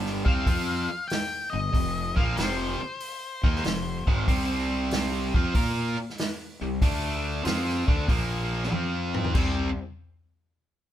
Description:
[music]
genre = blues rock power trio and southern rock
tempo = 95 BPM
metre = 4/4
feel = swing 68% on 8ths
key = unclear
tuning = A4 = 440 Hz
[part]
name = distorted electric guitar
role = riff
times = 0.0-9.7 s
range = F2 to Bb4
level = -29 LUFS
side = equal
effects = overdrive
[part]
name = fuzz fingered electric bass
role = bass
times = 0.0-9.7 s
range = F1 to Bb2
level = -31 LUFS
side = equal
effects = overdrive
[part]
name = vintage drum kit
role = drums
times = 0.1-9.5 s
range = crash cymbal, hi-hat, kick drum, snare drum, toms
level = -26 LUFS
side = equal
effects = none
[part]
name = octave-fuzz lead guitar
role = melody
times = 0.3-7.4 s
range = C5 to G5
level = -33 LUFS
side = left 4 dB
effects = distortion
[sound]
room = light reverb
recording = band playing live in one room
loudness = -24 LUFS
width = side -11 dB against mid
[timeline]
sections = 0.0-9.3 A section; 9.3-10.9 B section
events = drum fill 8.7-9.3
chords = 0.0 G5; 1.7 F5; 4.3 C5; 6.8 D5; 7.4 Dm7; 8.1 Bb5; 8.7 F5; 9.3 C5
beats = 0.46 1.10 | 1.74 2.37 3.01 3.64 | 4.28 4.91 5.55 6.18 | 6.82 7.45 8.08 8.71 | 9.35

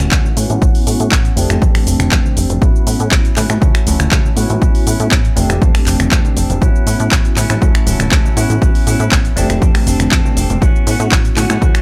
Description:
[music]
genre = filtered disco house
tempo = 120 BPM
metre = 4/4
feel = straight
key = A major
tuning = A4 = 438 Hz
[part]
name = bell-like tine electric piano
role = accompaniment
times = 0.0-11.8 s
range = A3 to G4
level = -24 LUFS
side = equal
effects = phaser, sidechain pumping, low-pass filter
[part]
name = clean electric guitar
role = riff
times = 0.0-11.8 s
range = E3 to B4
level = -28 LUFS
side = equal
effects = vintage 12-bit sampler grit, sidechain pumping, low-pass filter
[part]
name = plucky analog bass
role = bass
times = 0.0-11.7 s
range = D1 to A2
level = -19 LUFS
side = equal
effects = sidechain pumping, low-pass filter
[part]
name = house drum kit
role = drums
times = 0.0-11.8 s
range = finger snaps, handclaps, hi-hat, shaker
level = -21 LUFS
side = equal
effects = small room reverb, sidechain pumping on hats, sidechain pumping on cymbals, sidechain pumping on perc
[part]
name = tambourine and congas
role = percussion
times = 0.0-11.7 s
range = none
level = -27 LUFS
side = equal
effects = none
[part]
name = electronic kick drum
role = drums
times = 0.1-11.7 s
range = none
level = -16 LUFS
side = equal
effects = small room reverb
[sound]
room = little or no reverb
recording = none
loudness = -13 LUFS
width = mono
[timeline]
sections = 0.0-11.8 A section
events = filter sweep 0.0-11.8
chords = 0.4 A69; 1.4 F69; 2.6 A69; 3.6 Dmaj9; 4.4 A69; 5.4 F69; 6.6 A69; 7.6 Dmaj9; 8.4 A69; 9.4 F69; 10.6 A69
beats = 0.12 | 0.62 1.12 1.62 2.12 | 2.62 3.12 3.62 4.12 | 4.62 5.12 5.62 6.12 | 6.62 7.12 7.62 8.12 | 8.62 9.12 9.62 10.12 | 10.62 11.12 11.62

